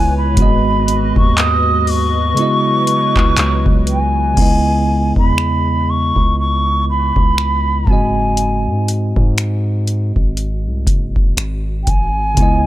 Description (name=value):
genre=contemporary R&B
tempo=60 BPM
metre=4/4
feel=swing 58% on 16ths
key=C# minor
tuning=A4 = 441 Hz
part: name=mellow hollow bansuri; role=melody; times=0.0-12.7 s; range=G5 to D#6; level=-17 LUFS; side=equal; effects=tape echo
part: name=bell-like tine electric piano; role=accompaniment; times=0.0-12.7 s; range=G#2 to D#5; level=-19 LUFS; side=right 1 dB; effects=medium stereo tremolo
part: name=hollow soft pad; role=sustained chords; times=0.0-4.4 s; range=F#3 to D#5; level=-25 LUFS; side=right 1 dB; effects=chorus
part: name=long sustained 808-style bass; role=bass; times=0.0-12.7 s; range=F#1 to G#2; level=-18 LUFS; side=equal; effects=none
part: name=booming analog drum machine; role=drums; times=0.4-12.6 s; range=crash cymbal, finger snaps, handclaps, hi-hat, kick drum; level=-15 LUFS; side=equal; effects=none
room=little or no reverb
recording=dry, gritty hardware recording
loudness=-13 LUFS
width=side -14 dB against mid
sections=0.0-4.4 A section; 4.4-12.7 B section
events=none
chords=0.4 G#m7; 2.4 C#m11; 4.4 C#m7; 7.9 G#7